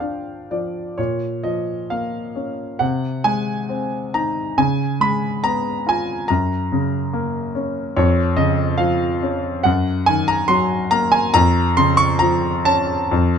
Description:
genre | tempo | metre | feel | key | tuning
classical, lyrical solo piano | 59-74 BPM | 4/4 | rubato | Bb minor | A4 = 440 Hz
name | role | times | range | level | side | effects
clear concert grand piano | solo | 0.0-13.4 s | F2 to C#6 | -17 LUFS | equal | none
room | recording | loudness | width
light reverb | close, detailed microphones | -17 LUFS | side -7 dB against mid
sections
1.0-13.4 A section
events
grand piano fill 0.0-1.0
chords
0.0 Bb; 1.0 Bbm; 2.8 Ab/C; 4.6 Db7; 6.3 Gb; 8.0 Dbadd9/F; 9.7 Ebm/Gb; 11.4 Faug

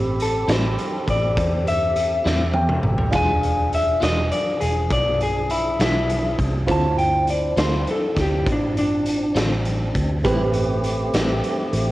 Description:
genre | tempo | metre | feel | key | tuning
slow blues | 68 BPM (dotted quarters) | 12/8 | straight | A minor | A4 = 441 Hz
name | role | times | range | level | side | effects
dark grand piano | accompaniment | 0.0-11.9 s | C4 to B5 | -28 LUFS | right 3 dB | cassette tape
tonewheel organ | sustained chords | 0.0-11.9 s | F3 to A4 | -30 LUFS | equal | slow rotary speaker, cassette tape
vintage muted fingered electric bass | bass | 0.0-11.9 s | E1 to E2 | -24 LUFS | equal | none
electric guitar through a small old amp | melody | 0.2-9.3 s | D4 to A5 | -22 LUFS | left 1 dB | cassette tape
raw garage drum kit | drums | 0.2-11.9 s | hi-hat, kick drum, snare drum, splash cymbal, toms | -25 LUFS | equal | cassette tape
clean electric guitar | accompaniment | 0.5-11.3 s | A2 to F4 | -26 LUFS | left 2 dB | tremolo, cassette tape
room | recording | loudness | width
little or no reverb | home recording on cassette | -18 LUFS | side -16 dB against mid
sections
0.0-11.9 A section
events
drum fill 2.2-3.1; grand piano fill 2.2-3.1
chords
0.0 Am7; 3.1 E7b9; 6.7 Dm7; 10.2 Am7

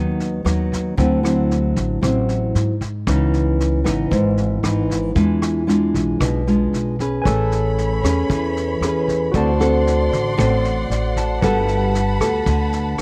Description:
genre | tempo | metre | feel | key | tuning
bossa nova | 115 BPM | 4/4 | straight | unclear | A4 = 439 Hz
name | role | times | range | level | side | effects
nylon-string guitar | accompaniment | 0.0-13.0 s | G#2 to B4 | -22 LUFS | equal | none
upright bass | bass | 0.0-13.0 s | G1 to G#2 | -23 LUFS | equal | none
vintage brush drum kit | drums | 0.2-13.0 s | kick drum, rim click, snare drum | -28 LUFS | equal | none
barky tine electric piano | accompaniment | 7.2-13.0 s | F#4 to A5 | -27 LUFS | equal | overdrive
warm symphonic violin section | sustained chords | 7.3-13.0 s | C#5 to C6 | -31 LUFS | equal | none
room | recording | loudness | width
small room ambience | dry, close 1970s-style studio recording | -19 LUFS | mono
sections
0.0-13.0 A section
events
tine electric piano fill 10.6-11.4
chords
0.0 G#m7 (rootless); 1.0 D9; 3.1 C#m9; 5.2 E7b9; 7.2 Amaj9; 9.3 D7; 11.4 Gmaj9

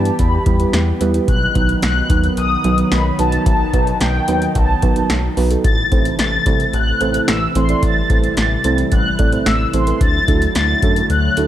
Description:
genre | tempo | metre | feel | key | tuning
synth-pop | 110 BPM | 4/4 | straight | unclear | A4 = 440 Hz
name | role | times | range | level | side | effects
mellow synth brass | melody | 0.0-11.5 s | G5 to A6 | -20 LUFS | left 2 dB | chorus, shimmer reverb
muted felt-like synth keys | accompaniment | 0.0-11.5 s | F#3 to D5 | -21 LUFS | right 4 dB | chorus, shimmer reverb
chorused pulse-width pad | sustained chords | 0.0-11.5 s | C3 to G4 | -24 LUFS | left 1 dB | shimmer reverb
chorused synth bass | bass | 0.0-11.5 s | A1 to G2 | -20 LUFS | equal | none
electro analog drum machine | drums | 0.1-11.5 s | hi-hat, kick drum, snare drum | -18 LUFS | equal | none
room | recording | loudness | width
light reverb, digital ambience | dark, warm production | -13 LUFS | side -12 dB against mid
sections
0.0-11.5 A section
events
none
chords
0.0 Em; 1.3 B; 5.6 Am; 10.0 Dadd9

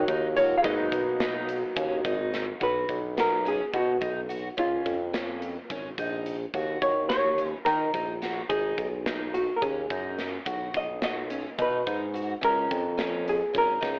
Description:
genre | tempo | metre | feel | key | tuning
progressive instrumental, band music in an uneven meter | 214 BPM (eighths) | 7/8 | straight | unclear | A4 = 440 Hz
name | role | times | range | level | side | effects
hollow-body jazz guitar | melody | 0.0-14.0 s | F4 to F5 | -29 LUFS | equal | cassette tape
vibraphone with medium hard mallets | second line | 0.0-2.3 s | F4 to Ab4 | -34 LUFS | equal | cassette tape
bright grand piano | accompaniment | 0.0-2.6 s | Gb3 to F5 | -38 LUFS | equal | cassette tape
smooth synth bass | bass | 0.0-14.0 s | Ab1 to Eb3 | -34 LUFS | equal | none
picked twelve-string acoustic guitar | arpeggios | 0.1-14.0 s | Db4 to Gb4 | -38 LUFS | equal | cassette tape
tight metal drum kit | drums | 0.1-14.0 s | hi-hat, kick drum, snare drum | -38 LUFS | equal | cassette tape
room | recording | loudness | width
light reverb | home recording on cassette, telephone sound | -28 LUFS | mono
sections
0.0-2.6 A section; 2.6-14.0 B section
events
none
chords
0.0 Ebm7; 0.6 Abm7; 2.6 B; 4.6 Db; 6.5 Ebm7; 8.5 Abm7; 10.5 B; 12.4 Db

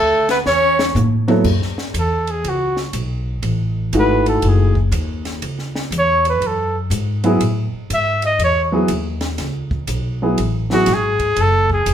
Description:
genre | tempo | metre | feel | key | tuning
modal jazz | 121 BPM | 4/4 | swing 66% on 8ths | F# dorian | A4 = 440 Hz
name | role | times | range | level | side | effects
mellow trumpet | melody | 0.0-11.9 s | F#4 to E5 | -17 LUFS | right 1 dB | plate reverb
bright tenor saxophone | second line | 0.0-0.9 s | A3 to C#4 | -21 LUFS | left 4 dB | none
upright bass | bass | 0.0-11.9 s | E1 to A2 | -20 LUFS | equal | none
compact cocktail drum kit | drums | 0.3-11.9 s | crash cymbal, hi-hat, kick drum, ride cymbal, snare drum, toms | -26 LUFS | equal | none
warm upright piano | accompaniment | 1.3-10.9 s | E3 to C#5 | -18 LUFS | equal | none
room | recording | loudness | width
wet club reverb, RT60 0.8 s | heard from further back in the room | -15 LUFS | side -9 dB against mid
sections
0.0-1.5 A section; 1.5-11.9 B section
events
drum fill 0.5-1.5; trumpet solo 1.5-11.9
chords
0.0 C#m(b13); 1.5 F#m9

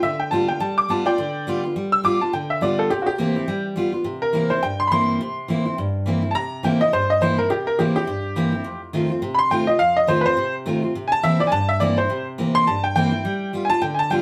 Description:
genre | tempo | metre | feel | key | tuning
rock | 209 BPM | 4/4 | swing 58% on 8ths | C mixolydian | A4 = 440 Hz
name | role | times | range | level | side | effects
clear upright piano | melody | 0.0-14.2 s | F#4 to E6 | -23 LUFS | equal | none
picked steel-string acoustic guitar | accompaniment | 0.0-14.2 s | F2 to F4 | -25 LUFS | equal | none
room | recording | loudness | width
moderate studio reverb, RT60 0.6 s | band playing live in one room | -21 LUFS | mono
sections
0.0-4.1 A section; 4.1-14.2 B section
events
upright piano solo 4.1-14.2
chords
0.0 G7; 2.9 C7; 3.5 G7; 4.1 C7; 8.6 F7; 10.9 C7; 13.2 G7

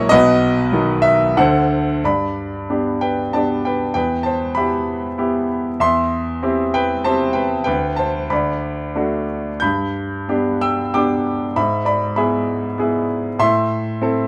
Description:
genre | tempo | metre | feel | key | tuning
classical, lyrical solo piano | 89-100 BPM | 3/4 | rubato | G major | A4 = 443 Hz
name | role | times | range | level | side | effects
bright grand piano | solo | 0.0-14.3 s | A#1 to G6 | -19 LUFS | equal | none
room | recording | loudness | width
light reverb | none | -19 LUFS | mono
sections
0.0-2.0 A section; 2.0-14.3 B section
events
none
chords
0.1 B; 1.4 D7; 2.0 G; 4.0 Em; 7.7 G/D; 8.3 D; 9.6 G; 11.6 E/G#; 13.4 Am

